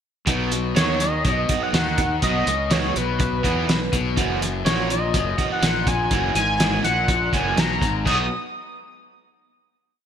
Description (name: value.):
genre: indie rock.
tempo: 123 BPM.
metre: 4/4.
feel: straight.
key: B major.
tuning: A4 = 438 Hz.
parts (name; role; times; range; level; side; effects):
overdriven electric guitar; riff; 0.3-8.3 s; F#2 to F#4; -27 LUFS; left 6 dB; none.
raw garage guitar; riff; 0.3-8.3 s; E3 to F#4; -28 LUFS; right 7 dB; overdrive, lush chorus.
fuzz fingered electric bass; bass; 0.3-8.3 s; F#1 to E2; -27 LUFS; equal; overdrive.
cloth-damped thuddy drum kit; drums; 0.3-8.2 s; crash cymbal, hi-hat, kick drum, snare drum; -23 LUFS; equal; gated reverb.
lead with added fifth; melody; 0.8-8.3 s; B4 to D#6; -24 LUFS; equal; chorus, digital delay.
room: moderate lush hall reverb, RT60 1.9 s, small room ambience.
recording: bright 1980s-style digital production.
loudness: -19 LUFS.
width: side -8 dB against mid.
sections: 0.3-8.1 verse; 8.1-10.0 final chord.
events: none.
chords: 0.3 B; 4.2 F#7; 8.1 B.